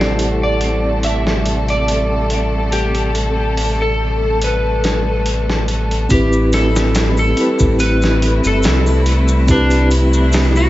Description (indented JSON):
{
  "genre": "trip hop",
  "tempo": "71 BPM",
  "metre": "4/4",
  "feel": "swing 54% on 16ths",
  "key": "A dorian",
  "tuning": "A4 = 440 Hz",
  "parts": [
    { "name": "electric slide guitar", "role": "melody", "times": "0.0-10.7 s", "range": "D4 to E5", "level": "-20 LUFS", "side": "equal", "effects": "dub echo" },
    { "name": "mellow tine electric piano", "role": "accompaniment", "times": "0.0-10.7 s", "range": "C4 to B4", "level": "-20 LUFS", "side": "equal", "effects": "tremolo, tape echo" },
    { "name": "clear studio string section", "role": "sustained chords", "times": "0.0-10.7 s", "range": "C3 to A4", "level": "-22 LUFS", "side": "left 1 dB", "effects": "vintage 12-bit sampler grit" },
    { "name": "round analog bass", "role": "bass", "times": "0.0-10.7 s", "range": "G1 to C2", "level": "-17 LUFS", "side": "equal", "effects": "none" },
    { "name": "dusty soul sampler-style drum kit", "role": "drums", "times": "0.0-10.6 s", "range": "hi-hat, kick drum, snare drum", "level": "-21 LUFS", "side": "equal", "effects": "low-pass filter on hats, vintage 12-bit sampler grit, low-pass filter on snare, low-pass filter on kick, low-pass filter on room" },
    { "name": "flickering grainy texture", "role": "texture", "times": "0.0-6.2 s", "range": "C4 to F#5", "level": "-37 LUFS", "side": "left 1 dB", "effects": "none" },
    { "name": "maracas and triangle", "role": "percussion", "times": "6.1-10.7 s", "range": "none", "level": "-31 LUFS", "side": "left 2 dB", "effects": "none" }
  ],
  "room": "little or no reverb",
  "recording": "echo-heavy mix, vinyl crackle, nothing above 7.8 kHz",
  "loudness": "-13 LUFS",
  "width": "side -15 dB against mid",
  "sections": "0.0-6.1 A section; 6.1-10.7 B section",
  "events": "filter sweep on tine electric piano 0.0-6.1",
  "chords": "0.0 Am7",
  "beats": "0.19 1.03 1.88 | 2.72 3.57 4.42 5.26 | 6.11 6.95 7.79 8.64 | 9.48 10.33"
}